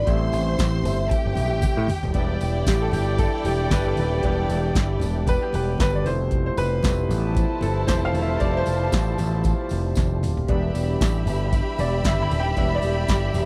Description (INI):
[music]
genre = disco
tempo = 115 BPM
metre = 4/4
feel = swing 56% on 16ths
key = E phrygian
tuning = A4 = 440 Hz
[part]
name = vibraphone with soft mallets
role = melody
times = 0.0-1.9 s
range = E5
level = -30 LUFS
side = equal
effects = none
[part]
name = warm symphonic violin section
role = second line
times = 0.0-13.5 s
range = E4 to C6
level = -32 LUFS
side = equal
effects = none
[part]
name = clear baby grand piano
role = accompaniment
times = 0.0-13.5 s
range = B2 to B5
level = -30 LUFS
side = equal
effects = none
[part]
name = mellow French horn section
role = sustained chords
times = 0.0-13.5 s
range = B2 to G4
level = -34 LUFS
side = equal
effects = none
[part]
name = overdriven picked electric bass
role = bass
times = 0.0-13.5 s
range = D#1 to A2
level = -26 LUFS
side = equal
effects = none
[part]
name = electro analog drum machine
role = drums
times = 0.1-13.5 s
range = hi-hat, kick drum, snare drum, toms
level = -27 LUFS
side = equal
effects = none
[part]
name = tambourine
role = percussion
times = 0.1-13.5 s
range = none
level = -47 LUFS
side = equal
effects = none
[part]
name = congas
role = percussion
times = 0.6-13.5 s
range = none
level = -34 LUFS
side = equal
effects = none
[sound]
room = little or no reverb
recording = dry, close 1970s-style studio recording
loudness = -22 LUFS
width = mono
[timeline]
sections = 0.0-2.2 A section; 2.2-13.5 B section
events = drum fill 1.6-2.2, 10.0-10.5; grand piano solo 2.2-13.5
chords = 0.1 Am7; 2.2 Em7; 6.1 Fmaj9#11; 10.5 Em7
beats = | 0.07 0.59 1.11 1.63 | 2.15 2.67 3.19 3.71 | 4.24 4.76 5.28 5.80 | 6.32 6.84 7.36 7.88 | 8.40 8.92 9.44 9.96 | 10.48 11.00 11.52 12.04 | 12.56 13.08